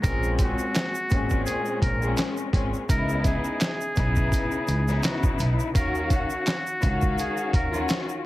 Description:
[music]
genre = hip hop, boom-bap hip-hop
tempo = 84 BPM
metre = 4/4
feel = swing 56% on 16ths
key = Eb minor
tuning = A4 = 439 Hz
[part]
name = trumpet with metal mute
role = melody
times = 0.0-7.9 s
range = Gb4 to Bb4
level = -30 LUFS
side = equal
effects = high-pass filter, low-pass filter, ping-pong delay
[part]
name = rich studio string section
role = accompaniment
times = 0.0-8.2 s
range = Bb2 to F5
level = -28 LUFS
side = left 2 dB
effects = cassette tape, high-pass filter, low-pass filter
[part]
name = upright bass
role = bass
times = 0.0-7.8 s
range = Ab1 to Eb2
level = -28 LUFS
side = equal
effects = none
[part]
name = trip hop sampler-style drum kit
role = drums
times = 0.0-8.1 s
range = handclaps, hi-hat, kick drum, snare drum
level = -25 LUFS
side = equal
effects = none
[part]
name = tube shaker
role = percussion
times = 0.0-8.2 s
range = none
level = -42 LUFS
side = right 9 dB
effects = none
[sound]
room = light reverb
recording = heavily compressed radio sound, multiband compression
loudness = -22 LUFS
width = side -16 dB against mid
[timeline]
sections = 0.0-8.3 A section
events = none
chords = 0.0 Bbm9; 2.9 Dbm9; 5.7 Ebm9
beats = | 0.04 0.75 1.46 2.18 | 2.89 3.61 4.32 5.04 | 5.75 6.46 7.18 7.89

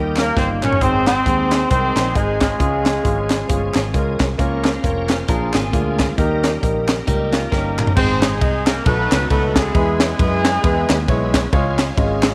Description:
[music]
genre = uptempo gospel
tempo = 134 BPM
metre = 4/4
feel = swing 58% on 8ths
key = Ab major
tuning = A4 = 436 Hz
[part]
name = warm grand piano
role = accompaniment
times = 0.0-12.3 s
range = Ab2 to Eb5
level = -25 LUFS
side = equal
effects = none
[part]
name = bright tonewheel organ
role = sustained chords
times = 0.0-12.3 s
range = Eb3 to Ab5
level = -33 LUFS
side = equal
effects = none
[part]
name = fingered electric bass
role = bass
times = 0.0-12.3 s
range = F1 to Gb2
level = -25 LUFS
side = equal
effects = none
[part]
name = mellow alto saxophone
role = melody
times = 0.2-3.7 s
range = Ab3 to Db4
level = -23 LUFS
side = equal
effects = none
[part]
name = warm horn section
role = melody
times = 0.2-3.7, 8.0-11.3 s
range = G#3 to Db5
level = -25 LUFS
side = equal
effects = none
[part]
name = crisp fusion drum kit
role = drums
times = 0.2-12.3 s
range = crash cymbal, hi-hat, kick drum, ride cymbal, snare drum, toms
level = -22 LUFS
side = equal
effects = none
[part]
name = group handclap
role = percussion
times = 0.2-12.3 s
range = none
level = -31 LUFS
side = equal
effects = none
[part]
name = clean electric guitar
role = second line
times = 5.3-7.9 s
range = G3 to Bb4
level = -31 LUFS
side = equal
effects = none
[sound]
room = light reverb, studio reverb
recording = none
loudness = -18 LUFS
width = mono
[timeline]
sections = 0.0-8.0 A section; 8.0-12.3 B section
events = drum fill 0.4-0.8, 7.5-8.0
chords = 0.0 Eb; 0.8 Ab; 2.6 Db; 4.4 Bbm/Db; 5.3 Bb7; 6.2 Eb; 8.0 Ab; 8.9 B7; 9.8 E; 11.5 Db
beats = 0.36 | 0.81 1.26 1.71 2.16 | 2.60 3.05 3.50 3.95 | 4.39 4.84 5.29 5.74 | 6.18 6.63 7.08 7.52 | 7.97 8.41 8.86 9.31 | 9.75 10.20 10.64 11.09 | 11.53 11.97

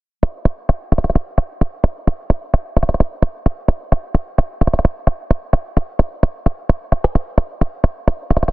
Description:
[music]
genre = hip hop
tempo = 130 BPM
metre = 4/4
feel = half-time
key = none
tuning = none
[part]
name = electronic hi-hat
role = drums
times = 0.2-8.5 s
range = none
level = -27 LUFS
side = left 1 dB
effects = none
[sound]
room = digital ambience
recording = dense, heavily limited modern master, low-pass filter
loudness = -18 LUFS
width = side -19 dB against mid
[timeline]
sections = 0.2-8.5 A section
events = kick muted 0.2-7.6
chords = none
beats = | 0.23 0.69 1.15 1.61 | 2.07 2.54 3.00 3.46 | 3.92 4.38 4.84 5.30 | 5.77 6.23 6.69 7.15 | 7.61 8.07

